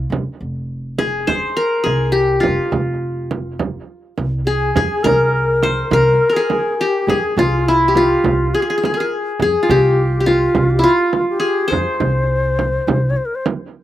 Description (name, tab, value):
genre	Arabic maqam ensemble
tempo	103 BPM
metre	4/4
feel	straight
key	F maqam nahawand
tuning	A4 = 440 Hz
part	qanun	melody	0.0-13.4 s	E4 to C5	-16 LUFS	left 1 dB	none
part	upright bass	bass	0.0-13.1 s	F1 to F2	-20 LUFS	equal	none
part	frame drum	percussion	0.1-13.6 s	none	-22 LUFS	right 5 dB	none
part	bright reedy ney	second line	4.5-13.5 s	E4 to Db5	-21 LUFS	left 2 dB	slapback echo
room	little or no reverb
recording	recorded outdoors, with no room sound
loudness	-14 LUFS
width	side -13 dB against mid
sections	0.0-4.8 A section; 4.8-13.8 B section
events	none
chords	none